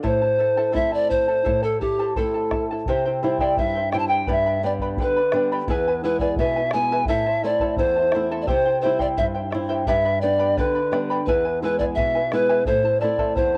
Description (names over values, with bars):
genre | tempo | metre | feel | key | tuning
andean folk, Andean ensemble | 86 BPM | 2/4 | straight | A minor | A4 = 441 Hz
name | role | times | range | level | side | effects
charango | accompaniment | 0.0-13.6 s | E4 to B5 | -30 LUFS | equal | cassette tape
flamenco guitar | accompaniment | 0.0-13.6 s | E2 to E4 | -30 LUFS | equal | cassette tape
bombo | percussion | 0.0-13.5 s | none | -32 LUFS | equal | none
bright polished pan flute | melody | 0.1-13.6 s | G4 to A5 | -23 LUFS | equal | none
room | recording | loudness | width
moderate spring reverb, RT60 2.8 s | home recording on cassette | -21 LUFS | mono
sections
0.0-2.9 A section; 2.9-13.6 B section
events
none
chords
0.0 Am; 2.9 C; 4.3 G; 5.7 E; 7.1 Am; 8.5 C; 9.9 G; 11.3 E; 12.7 Am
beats
| 0.04 0.75 | 1.46 2.16 | 2.87 3.58 | 4.28 4.98 | 5.68 6.39 | 7.09 7.79 | 8.49 9.19 | 9.89 10.58 | 11.28 11.98 | 12.67 13.37